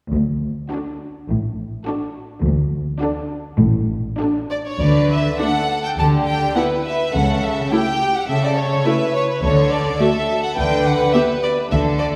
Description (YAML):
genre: quick classical-period movement for symphony orchestra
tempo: 104 BPM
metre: 4/4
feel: rubato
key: D major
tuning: A4 = 440 Hz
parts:
  - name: rich studio double bass section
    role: bass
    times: 0.1-12.2 s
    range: A1 to D2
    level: -25 LUFS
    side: equal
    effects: none
  - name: warm studio cello section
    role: bass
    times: 0.1-12.2 s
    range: D2 to D3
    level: -24 LUFS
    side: equal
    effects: none
  - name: rich studio violin section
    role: melody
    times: 0.7-12.1 s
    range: A4 to A5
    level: -24 LUFS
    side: equal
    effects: none
  - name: clear studio violin section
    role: second line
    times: 0.7-12.2 s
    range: F#4 to B4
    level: -26 LUFS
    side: equal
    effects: none
  - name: warm studio viola section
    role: accompaniment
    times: 0.7-11.2 s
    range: A3 to G4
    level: -25 LUFS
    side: equal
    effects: none
room: wet scoring stage reverb, RT60 1.9 s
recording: heard from further back in the room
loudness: -19 LUFS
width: mono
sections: 0.1-4.8 A section; 4.8-12.2 B section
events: none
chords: 0.1 D; 4.8 D5; 6.0 Em7/D; 7.1 A7/C#; 9.4 D5; 10.6 G/D